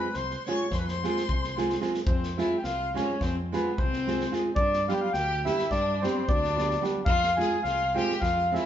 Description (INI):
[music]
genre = balkan folk, Balkan wedding band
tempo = 216 BPM (eighths)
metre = 9/8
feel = straight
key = F hungarian minor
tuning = A4 = 441 Hz
[part]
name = mellow accordion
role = melody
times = 0.0-8.7 s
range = B4 to Ab5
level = -29 LUFS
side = left 1 dB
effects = none
[part]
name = clear violin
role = second line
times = 0.0-8.7 s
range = B3 to Db6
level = -34 LUFS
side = left 5 dB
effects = none
[part]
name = nylon-string guitar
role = accompaniment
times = 0.0-8.7 s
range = G3 to Ab4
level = -30 LUFS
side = right 3 dB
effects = none
[part]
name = natural country drum kit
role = percussion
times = 0.1-8.6 s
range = kick drum, snare drum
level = -32 LUFS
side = left 1 dB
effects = none
[part]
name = picked electric bass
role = bass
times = 0.2-8.6 s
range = C2 to G2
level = -34 LUFS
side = equal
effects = none
[sound]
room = wet large studio reverb, RT60 1.4 s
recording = band playing live in one room, nothing above 7.5 kHz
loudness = -24 LUFS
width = side -10 dB against mid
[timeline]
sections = 0.0-2.1 A section; 2.1-8.7 B section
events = none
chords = 0.0 Fm; 4.6 G; 7.1 Fm